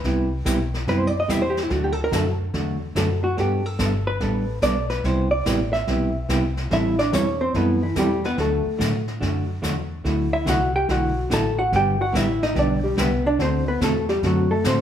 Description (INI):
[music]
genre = country, western swing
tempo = 144 BPM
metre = 4/4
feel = swing 66% on 8ths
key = unclear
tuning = A4 = 439 Hz
[part]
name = hollow-body jazz guitar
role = second line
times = 0.0-14.8 s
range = E3 to A5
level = -23 LUFS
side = equal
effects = none
[part]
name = hollow-body jazz guitar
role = accompaniment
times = 0.0-14.8 s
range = C3 to A4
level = -25 LUFS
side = right 1 dB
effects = none
[part]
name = vintage muted fingered electric bass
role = bass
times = 0.0-14.8 s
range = G1 to A2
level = -26 LUFS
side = equal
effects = none
[part]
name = jazz brush drum kit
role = drums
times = 0.0-14.8 s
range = brushed snare drum, hi-hat, kick drum, snare drum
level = -30 LUFS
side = left 1 dB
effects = none
[sound]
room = wet large studio reverb, RT60 1.1 s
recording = band playing live in one room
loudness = -20 LUFS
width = side -9 dB against mid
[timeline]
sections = 0.0-14.8 A section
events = hollow-body jazz guitar solo 0.0-14.8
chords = 0.0 Cmaj7; 1.7 D; 3.4 Gadd9; 5.0 Cmaj7; 6.7 Am7; 8.4 D; 10.1 Dadd9; 11.7 G; 13.4 D7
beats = | 0.04 0.46 0.87 1.29 | 1.71 2.12 2.54 2.96 | 3.37 3.79 4.21 4.63 | 5.04 5.46 5.88 6.29 | 6.71 7.13 7.55 7.96 | 8.38 8.80 9.22 9.63 | 10.05 10.47 10.89 11.30 | 11.72 12.14 12.56 12.97 | 13.39 13.81 14.23 14.65